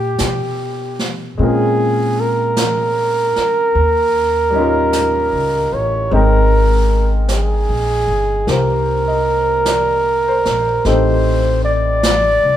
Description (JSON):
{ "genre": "jazz ballad", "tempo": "51 BPM", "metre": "4/4", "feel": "swing 67% on 8ths", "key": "unclear", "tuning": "A4 = 440 Hz", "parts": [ { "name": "mellow flugelhorn", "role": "melody", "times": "0.0-12.6 s", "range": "G4 to D5", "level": "-16 LUFS", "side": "right 1 dB", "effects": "none" }, { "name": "warm grand piano", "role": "accompaniment", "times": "0.0-12.6 s", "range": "G3 to G5", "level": "-21 LUFS", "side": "left 2 dB", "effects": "none" }, { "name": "upright bass", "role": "bass", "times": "0.0-12.6 s", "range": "G1 to B2", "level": "-19 LUFS", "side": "equal", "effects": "none" }, { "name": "jazz brush drum kit", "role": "drums", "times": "0.2-12.6 s", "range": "brushed snare drum, hi-hat, snare drum", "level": "-25 LUFS", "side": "right 2 dB", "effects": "none" } ], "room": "light reverb", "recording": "band playing live in one room", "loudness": "-13 LUFS", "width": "side -11 dB against mid", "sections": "0.0-12.6 A section", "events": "none", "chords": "0.0 Gm9; 1.4 Bbm7; 3.7 Eb7; 6.1 Abmaj9; 10.8 Am7b5" }